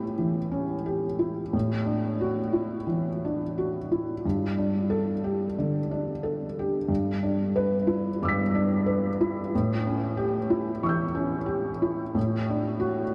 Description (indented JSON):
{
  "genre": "neoclassical minimalist piano",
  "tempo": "91 BPM",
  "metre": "4/4",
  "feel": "rubato",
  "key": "unclear",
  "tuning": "A4 = 442 Hz",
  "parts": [
    { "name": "felt-muted upright piano", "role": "solo", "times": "0.0-13.1 s", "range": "G2 to B6", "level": "-27 LUFS", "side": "equal", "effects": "diffuse ambient delay" }
  ],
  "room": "wet huge ambient reverb, RT60 7.5 s",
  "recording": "dreamy mix soaked in reverb",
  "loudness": "-27 LUFS",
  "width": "mono",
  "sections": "0.0-13.1 A section",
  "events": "none",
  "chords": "0.0 A7; 1.5 Dadd9/A; 4.2 Gsus2; 6.9 Em7/G; 9.5 A7; 12.2 D/A"
}